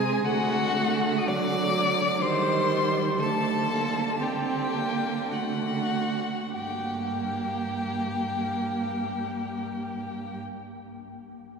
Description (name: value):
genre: classical, slow romantic movement for string quartet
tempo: 47-64 BPM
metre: 3/4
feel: rubato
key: G minor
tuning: A4 = 440 Hz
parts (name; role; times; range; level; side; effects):
- warm violin; melody; 0.0-10.4 s; F#5 to Eb6; -31 LUFS; left 4 dB; none
- rich violin; second line; 0.0-10.4 s; F#4 to D5; -31 LUFS; equal; none
- warm viola; accompaniment; 0.0-10.4 s; F#3 to C4; -29 LUFS; right 3 dB; none
- warm cello; bass; 0.0-10.4 s; G2 to Eb3; -34 LUFS; right 2 dB; none
room: wet cathedral reverb, RT60 5.7 s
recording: none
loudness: -25 LUFS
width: side -5 dB against mid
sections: 0.0-6.5 A section; 6.5-10.0 B section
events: slowing down 0.0-6.5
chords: 0.3 D; 2.2 Cm/Eb; 3.2 D7; 6.5 Gm